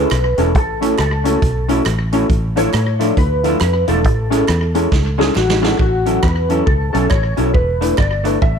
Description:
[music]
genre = ska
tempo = 137 BPM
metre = 4/4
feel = swing 61% on 8ths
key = A major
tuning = A4 = 442 Hz
[part]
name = mellow electric guitar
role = melody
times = 0.0-8.6 s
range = F#4 to E5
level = -20 LUFS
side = left 1 dB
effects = analog chorus
[part]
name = vintage hollow-body jazz guitar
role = accompaniment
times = 0.0-8.4 s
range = F3 to E4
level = -22 LUFS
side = right 12 dB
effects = none
[part]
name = dark upright piano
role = stabs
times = 0.0-8.4 s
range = C#4 to B4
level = -21 LUFS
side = left 14 dB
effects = none
[part]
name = fingered electric bass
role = bass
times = 0.0-8.6 s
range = E1 to A2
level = -18 LUFS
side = equal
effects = none
[part]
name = swinging big-band drum kit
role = drums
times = 0.1-8.5 s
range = hi-hat, kick drum, rim click, snare drum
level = -19 LUFS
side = right 2 dB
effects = slapback echo
[part]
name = group handclap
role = percussion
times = 0.1-8.1 s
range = none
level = -33 LUFS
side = right 11 dB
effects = none
[sound]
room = small room ambience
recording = 1960s-style stereo with parts hard left and right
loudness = -13 LUFS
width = side -7 dB against mid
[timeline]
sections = 0.0-5.8 A section; 5.8-8.6 B section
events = drum fill 4.9-5.8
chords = 0.0 Amaj7; 0.6 F#m7/A; 2.3 Dmadd9/A; 4.0 Amaj7; 5.8 A6; 7.5 E7sus4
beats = 0.11 | 0.55 0.99 1.42 1.86 | 2.30 2.74 3.17 3.61 | 4.05 4.49 4.92 5.36 | 5.80 6.24 6.67 7.11 | 7.55 7.99 8.42

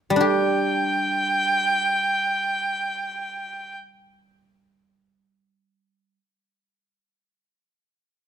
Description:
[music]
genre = chinese traditional, Chinese chamber ensemble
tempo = free time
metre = none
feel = none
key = unclear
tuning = A4 = 440 Hz
[part]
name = guzheng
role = accompaniment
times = 0.1-6.2 s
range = G3 to G4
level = -23 LUFS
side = equal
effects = none
[part]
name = clear erhu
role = melody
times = 0.2-3.8 s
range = G5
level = -22 LUFS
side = right 1 dB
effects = none
[sound]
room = moderate recital hall reverb, RT60 1.5 s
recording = close, detailed microphones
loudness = -20 LUFS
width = side -8 dB against mid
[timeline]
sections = 0.2-5.5 A section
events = none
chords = none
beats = free time

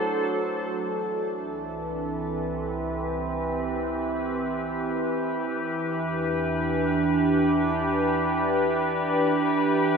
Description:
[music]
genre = ambient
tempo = free time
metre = none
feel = none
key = unclear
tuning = A4 = 437 Hz
[part]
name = evolving wavetable pad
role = sustained chords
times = 0.0-10.0 s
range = E3 to C5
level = -24 LUFS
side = right 1 dB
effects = chorus, built-in reverb, shimmer reverb
[part]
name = analog drone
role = drone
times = 0.0-0.9 s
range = A3 to E4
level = -42 LUFS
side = left 2 dB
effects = none
[part]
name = deep rumbling drone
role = bass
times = 1.6-10.0 s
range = C2 to E2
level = -41 LUFS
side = left 1 dB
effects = built-in reverb
[sound]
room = wet lush hall reverb, RT60 2.9 s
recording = none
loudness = -24 LUFS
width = side -5 dB against mid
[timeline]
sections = 0.8-10.0 A section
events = fade-out on synth drone 0.8-10.0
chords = 0.0 D7; 0.8 Cmaj7; 5.4 Em7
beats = free time

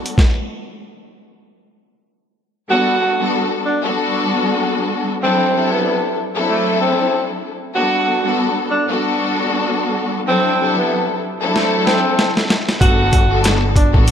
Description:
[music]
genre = hip hop, boom-bap hip-hop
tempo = 95 BPM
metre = 4/4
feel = swing 58% on 16ths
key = G major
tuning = A4 = 441 Hz
[part]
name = dark studio string section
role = accompaniment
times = 0.0-14.1 s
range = C3 to A4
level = -18 LUFS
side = left 2 dB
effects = high-pass filter, low-pass filter
[part]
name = boom bap sampler-style drum kit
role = drums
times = 0.1-0.4, 11.6-14.1 s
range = hi-hat, kick drum, snare drum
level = -15 LUFS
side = equal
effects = none
[part]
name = breathy tenor saxophone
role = melody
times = 2.7-13.9 s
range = A3 to F#4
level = -19 LUFS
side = right 1 dB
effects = high-pass filter, low-pass filter, tape echo
[part]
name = upright bass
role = bass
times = 12.8-14.1 s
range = G1 to A1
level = -18 LUFS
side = equal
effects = none
[sound]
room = moderate plate reverb, RT60 2.6 s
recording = dreamy mix soaked in reverb, lossy compression artefacts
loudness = -14 LUFS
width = side -8 dB against mid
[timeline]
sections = 0.0-2.7 A section; 2.7-14.1 B section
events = drum fill 11.5-12.8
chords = 0.2 N.C.; 2.7 Gmaj9; 5.2 D9; 7.8 Gmaj9; 10.3 D9; 12.8 Gmaj9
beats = | 0.18 0.81 1.44 2.07 | 2.71 3.34 3.97 4.60 | 5.23 5.86 6.49 7.13 | 7.76 8.39 9.02 9.65 | 10.28 10.91 11.55 12.18 | 12.81 13.44 14.07

